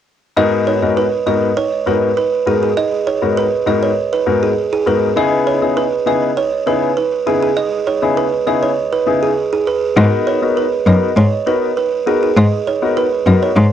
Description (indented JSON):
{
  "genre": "afrobeats",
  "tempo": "100 BPM",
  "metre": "4/4",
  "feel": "straight",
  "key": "G# minor",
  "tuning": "A4 = 441 Hz",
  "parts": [
    { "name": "warm grand piano", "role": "accompaniment", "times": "0.4-13.5 s", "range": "G#2 to A#4", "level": "-17 LUFS", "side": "left 7 dB", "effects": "cassette tape" },
    { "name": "buzzing kalimba", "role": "riff", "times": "0.4-13.5 s", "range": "G#4 to D#5", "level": "-16 LUFS", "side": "right 6 dB", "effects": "cassette tape, tape echo" },
    { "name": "rich cello", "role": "bass", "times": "10.0-13.6 s", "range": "F#2 to G#2", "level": "-11 LUFS", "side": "left 1 dB", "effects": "none" }
  ],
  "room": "light reverb",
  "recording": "home recording on cassette",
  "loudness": "-13 LUFS",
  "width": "side -10 dB against mid",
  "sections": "0.4-10.0 A section; 10.0-13.7 B section",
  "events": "none",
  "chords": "0.4 G#m7; 5.2 C#m7; 10.0 G#m7"
}